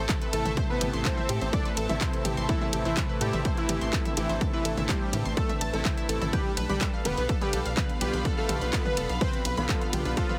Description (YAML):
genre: melodic techno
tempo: 125 BPM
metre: 4/4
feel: straight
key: unclear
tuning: A4 = 441 Hz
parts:
  - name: deep dark ambient pad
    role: sustained chords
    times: 0.0-10.4 s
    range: F#3 to F5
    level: -42 LUFS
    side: equal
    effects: none
  - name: analog pluck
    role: arpeggios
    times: 0.0-10.4 s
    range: G4 to C6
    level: -37 LUFS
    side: equal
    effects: chorus, sidechain pumping, tape echo
  - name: tight sequencer bass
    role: bass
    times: 0.0-10.1 s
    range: F1 to A2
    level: -34 LUFS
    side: equal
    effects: sidechain pumping
  - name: rich symphonic string section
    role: texture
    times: 0.0-10.4 s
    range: C4 to B5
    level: -40 LUFS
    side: equal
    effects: sidechain pumping
  - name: electronic kick drum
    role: drums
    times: 0.1-10.3 s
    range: none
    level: -31 LUFS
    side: equal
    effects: overdrive
  - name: house drum kit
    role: drums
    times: 0.1-10.4 s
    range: handclaps, hi-hat, ride cymbal, toms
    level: -36 LUFS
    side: equal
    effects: sidechain pumping on hats, sidechain pumping on toms, sidechain pumping on cymbals
  - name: fat analog lead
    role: melody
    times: 0.3-10.4 s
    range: E4 to D5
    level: -37 LUFS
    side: equal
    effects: chorus, sidechain pumping, tape echo
  - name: soft supersaw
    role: second line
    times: 0.3-10.4 s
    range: E3 to D4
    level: -40 LUFS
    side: equal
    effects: none
  - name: analog synth brass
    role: stabs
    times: 0.3-10.2 s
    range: C3 to F4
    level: -38 LUFS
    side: equal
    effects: chorus, sidechain pumping, tape echo
room: light reverb, digital ambience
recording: heavily compressed radio sound, multiband compression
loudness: -27 LUFS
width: mono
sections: 0.0-10.4 A section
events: none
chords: 0.0 Am; 6.3 Bdim